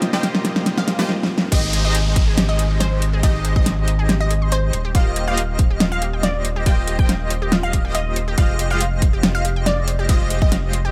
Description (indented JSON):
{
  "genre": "future bass",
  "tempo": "140 BPM",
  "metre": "4/4",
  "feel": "half-time",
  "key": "Ab major",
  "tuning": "A4 = 441 Hz",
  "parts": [
    { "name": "glassy digital keys", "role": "accompaniment", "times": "0.0-1.5 s", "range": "G3 to Bb4", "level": "-35 LUFS", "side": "equal", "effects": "none" },
    { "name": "ethereal airy pad", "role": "sustained chords", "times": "0.0-1.1 s", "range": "none", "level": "barely audible", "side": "none", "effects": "none" },
    { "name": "supersaw stab", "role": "riff", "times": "0.0-10.9 s", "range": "Ab3 to Eb5", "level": "-30 LUFS", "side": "equal", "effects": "sidechain pumping" },
    { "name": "saturated sub bass", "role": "bass", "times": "0.0-10.9 s", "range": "Eb1 to Ab1", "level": "-23 LUFS", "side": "equal", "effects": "sidechain pumping, high-pass filter" },
    { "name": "pop drum kit", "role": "drums", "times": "0.0-10.8 s", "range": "crash cymbal, hi-hat, snare drum", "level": "-24 LUFS", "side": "equal", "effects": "overdrive" },
    { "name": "riser and downlifter", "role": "sound effects", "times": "0.4-4.9 s", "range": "none", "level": "-32 LUFS", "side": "equal", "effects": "none" },
    { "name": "unison pluck", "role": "melody", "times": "0.1-10.6 s", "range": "C5 to G5", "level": "-30 LUFS", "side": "equal", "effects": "sidechain pumping, digital delay" },
    { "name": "airy dreamy lead", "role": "arpeggios", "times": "1.5-10.9 s", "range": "Eb5", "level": "-34 LUFS", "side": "equal", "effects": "chorus, sidechain pumping, digital delay" },
    { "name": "unison pluck", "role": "arpeggios", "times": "1.5-10.9 s", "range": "F4 to C6", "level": "-34 LUFS", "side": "equal", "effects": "sidechain pumping, digital delay" },
    { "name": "electronic kick drum", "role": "drums", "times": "1.5-10.5 s", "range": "none", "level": "-19 LUFS", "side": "equal", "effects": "none" }
  ],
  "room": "digital ambience",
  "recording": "none",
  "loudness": "-19 LUFS",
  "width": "mono",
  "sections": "0.0-1.5 A section; 1.5-10.9 B section",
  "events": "build-up 0.0-1.5; drum fill 0.0-1.1, 1.1-1.5; drop 1.5-10.9",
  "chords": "0.0 Eb69; 1.5 Abmaj7; 4.7 Eb69; 8.4 Fm9"
}